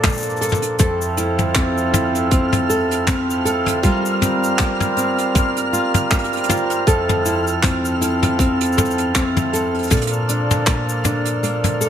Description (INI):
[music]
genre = folktronica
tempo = 79 BPM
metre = 4/4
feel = swing 56% on 16ths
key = F major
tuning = A4 = 440 Hz
[part]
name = hand-pumped harmonium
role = sustained chords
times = 0.0-11.9 s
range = F3 to Bb4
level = -23 LUFS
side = right 2 dB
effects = none
[part]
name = nylon-string guitar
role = arpeggios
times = 0.0-11.9 s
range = F2 to A4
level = -20 LUFS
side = equal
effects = tape echo
[part]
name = electronic kick drum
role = drums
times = 0.0-10.8 s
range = none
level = -19 LUFS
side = equal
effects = none
[part]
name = soft brush drum kit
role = drums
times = 0.0-11.9 s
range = cabasa, handclaps, hi-hat, toms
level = -22 LUFS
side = left 1 dB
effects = none
[part]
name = flickering grainy texture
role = texture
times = 1.1-11.9 s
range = F6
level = -27 LUFS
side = right 2 dB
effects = built-in reverb
[sound]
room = moderate concert hall reverb, RT60 1.7 s, small room ambience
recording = none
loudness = -16 LUFS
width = side -9 dB against mid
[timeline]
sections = 0.0-11.9 A section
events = kick drops out 11.4-11.9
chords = 0.0 Bbmaj7; 0.8 Fmaj7; 3.8 C7sus4/G; 6.9 Fmaj7; 9.9 Bbmaj7